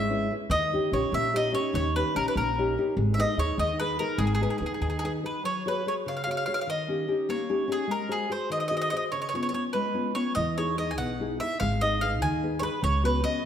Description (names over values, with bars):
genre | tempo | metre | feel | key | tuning
italian folk, Italian serenade | 98 BPM (dotted quarters) | 6/8 | rubato | G# harmonic minor | A4 = 440 Hz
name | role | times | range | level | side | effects
bowl-back mandolin | melody | 0.0-13.4 s | G#4 to G#5 | -28 LUFS | equal | none
nylon-string guitar | accompaniment | 0.0-13.4 s | B2 to C#5 | -29 LUFS | left 2 dB | none
upright bass | bass | 0.0-5.2, 10.4-13.2 s | G#1 to E2 | -29 LUFS | right 1 dB | none
room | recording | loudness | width
moderate recital hall reverb, RT60 1.5 s | none | -25 LUFS | side -9 dB against mid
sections
0.0-5.4 A section; 5.4-13.5 B section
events
none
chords
0.0 C#m7; 0.5 D#7; 3.0 G#m; 5.4 F#sus2; 6.7 D#7; 7.9 G#7; 9.1 C#7; 10.4 Emaj7; 11.6 G#m; 12.8 C#7sus4